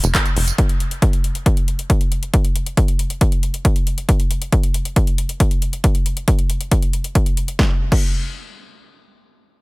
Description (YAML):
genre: uplifting trance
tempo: 137 BPM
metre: 4/4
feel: straight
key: unclear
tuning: A4 = 440 Hz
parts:
  - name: tight sequencer bass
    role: bass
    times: 0.0-0.5 s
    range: F1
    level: -18 LUFS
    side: equal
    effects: sidechain pumping
  - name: big-room dance drum kit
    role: drums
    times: 0.0-8.1 s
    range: crash cymbal, handclaps, hi-hat, snare drum, tambourine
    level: -25 LUFS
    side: left 1 dB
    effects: none
  - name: electronic kick drum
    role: drums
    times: 0.1-8.1 s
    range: none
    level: -16 LUFS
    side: equal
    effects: overdrive
room: little or no reverb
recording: none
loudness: -16 LUFS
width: side -25 dB against mid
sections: 0.0-7.6 A section; 7.6-9.6 B section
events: none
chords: none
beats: 0.14 | 0.58 1.02 1.46 1.90 | 2.33 2.77 3.21 3.65 | 4.09 4.53 4.96 5.40 | 5.84 6.28 6.71 7.15 | 7.59 8.03